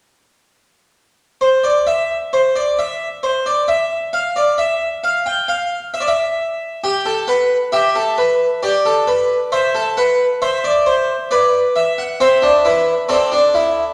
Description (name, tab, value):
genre	classical, baroque-style 4-part fugue for harpsichord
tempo	67 BPM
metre	3/4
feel	straight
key	C major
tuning	A4 = 442 Hz
part	harpsichord	solo	1.4-13.9 s	C4 to G5	-16 LUFS	equal	none
room	wet recital hall reverb, RT60 1.5 s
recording	none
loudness	-17 LUFS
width	mono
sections	1.4-13.9 A section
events	none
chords	1.4 N.C.; 6.8 G; 9.5 Am; 11.3 Bmadd11; 12.2 C